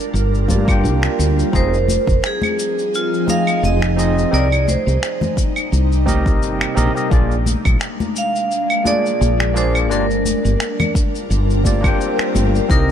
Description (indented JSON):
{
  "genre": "sunset chillout",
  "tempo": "86 BPM",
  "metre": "4/4",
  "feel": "swing 55% on 16ths",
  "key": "unclear",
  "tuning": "A4 = 438 Hz",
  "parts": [
    { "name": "ethereal airy pad", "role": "sustained chords", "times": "0.0-12.9 s", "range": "C3 to Bb4", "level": "-23 LUFS", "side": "equal", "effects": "ensemble chorus, built-in reverb, phaser" },
    { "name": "electronic cabasa, claves and finger snaps", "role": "drums", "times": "0.0-12.9 s", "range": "none", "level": "-25 LUFS", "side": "left 1 dB", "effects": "none" },
    { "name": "woody fretless electric bass", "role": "bass", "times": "0.1-12.9 s", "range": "F1 to G2", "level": "-17 LUFS", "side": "equal", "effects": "tube saturation, analog chorus" },
    { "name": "overdriven tine electric piano", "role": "accompaniment", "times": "0.5-12.9 s", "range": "Bb3 to G5", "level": "-23 LUFS", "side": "moving between left 3 dB and right 3 dB", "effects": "auto-pan, tape echo" },
    { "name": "electronic kick drum", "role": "drums", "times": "0.5-12.9 s", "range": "none", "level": "-17 LUFS", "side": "equal", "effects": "overdrive" },
    { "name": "congas", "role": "percussion", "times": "0.5-12.5 s", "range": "none", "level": "-25 LUFS", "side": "left 4 dB", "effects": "none" },
    { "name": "vibraphone with hard mallets", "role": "melody", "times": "1.6-12.9 s", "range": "F4 to F5", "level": "-21 LUFS", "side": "right 2 dB", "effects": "tape echo" },
    { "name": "swell", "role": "sound effects", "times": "11.5-12.7 s", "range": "none", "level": "-26 LUFS", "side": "left 2 dB", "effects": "none" }
  ],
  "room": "light reverb",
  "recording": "lossy compression artefacts",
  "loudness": "-14 LUFS",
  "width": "side -9 dB against mid",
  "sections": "0.0-12.7 A section",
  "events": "swell 11.5-12.7",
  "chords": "0.0 Gm7; 1.5 Fm7; 4.3 Cm7; 7.1 Bb7; 9.9 Gm7",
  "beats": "0.14 0.84 | 1.54 2.23 2.93 3.63 | 4.33 5.03 5.72 6.42 | 7.12 7.82 8.51 9.21 | 9.91 10.61 11.30 12.00 | 12.70"
}